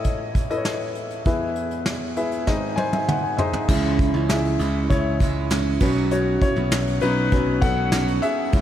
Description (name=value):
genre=piano-driven pop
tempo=99 BPM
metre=4/4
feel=straight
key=C# minor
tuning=A4 = 442 Hz
part: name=warm concert grand piano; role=accompaniment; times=0.0-8.6 s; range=G#1 to B#5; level=-24 LUFS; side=left 3 dB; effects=none
part: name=vintage brush drum kit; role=drums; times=0.0-8.6 s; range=crash cymbal, hi-hat, kick drum, snare drum, toms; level=-24 LUFS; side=equal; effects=none
part: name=picked steel-string acoustic guitar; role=riff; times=3.7-8.6 s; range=B2 to F#4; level=-25 LUFS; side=right 5 dB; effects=lush chorus
part: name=modern bright picked electric bass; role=bass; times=3.7-8.6 s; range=B1 to C#2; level=-24 LUFS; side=equal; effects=none
part: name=group handclap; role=percussion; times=4.3-8.1 s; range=none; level=-39 LUFS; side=right 5 dB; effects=none
room=moderate huge ambient reverb, RT60 8.0 s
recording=dreamy mix soaked in reverb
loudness=-19 LUFS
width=side -11 dB against mid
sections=0.0-3.7 A section; 3.7-8.6 B section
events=drum fill 2.5-3.7; grand piano fill 2.5-3.7; grand piano solo 3.7-8.6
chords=0.0 A; 1.3 E; 2.5 G#; 3.7 C#m; 5.8 Bsus2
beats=0.05 0.66 | 1.26 1.87 2.47 3.08 | 3.69 4.29 4.90 5.50 | 6.11 6.72 7.32 7.93 | 8.54